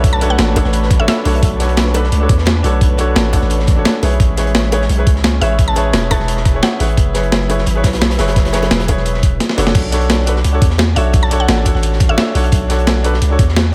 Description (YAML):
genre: liquid drum and bass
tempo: 173 BPM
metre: 4/4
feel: straight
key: B dorian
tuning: A4 = 441 Hz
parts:
  - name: mallet-like synth pluck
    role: melody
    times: 0.0-1.1, 5.4-6.9, 11.0-12.2 s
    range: E5 to A5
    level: -25 LUFS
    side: equal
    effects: chorus, tape echo
  - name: bright grand piano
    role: accompaniment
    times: 0.0-13.7 s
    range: D4 to C#5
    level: -22 LUFS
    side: equal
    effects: dub echo
  - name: muted studio string section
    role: sustained chords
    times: 0.0-9.7 s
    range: F#3 to B4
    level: -27 LUFS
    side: equal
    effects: sidechain pumping
  - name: long sustained 808-style bass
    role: bass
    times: 0.0-13.7 s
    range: E1 to E2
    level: -18 LUFS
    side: equal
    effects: none
  - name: breakbeat sampler-style drum kit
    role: drums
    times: 0.0-13.6 s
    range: crash cymbal, hi-hat, ride cymbal, snare drum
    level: -20 LUFS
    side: equal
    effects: studio reverb
  - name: crunchy breakbeat drum kit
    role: drums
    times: 0.0-13.7 s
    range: hi-hat, snare drum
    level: -28 LUFS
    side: equal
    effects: high-pass filter on hats, studio reverb, high-pass filter on snare, high-pass filter on room
  - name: electronic kick drum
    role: drums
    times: 0.0-13.5 s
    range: none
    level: -16 LUFS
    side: equal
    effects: studio reverb
  - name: bongos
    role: percussion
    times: 0.2-9.6 s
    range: none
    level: -26 LUFS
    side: equal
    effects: none
room: light reverb, small room ambience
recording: echo-heavy mix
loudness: -14 LUFS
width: mono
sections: 0.0-9.7 A section; 9.7-13.7 A section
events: drop 0.0-9.7, 9.7-13.7; drum fill 9.4-9.7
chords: 0.0 Bm7; 4.2 Amaj7; 7.0 F#7sus4; 9.7 Bm7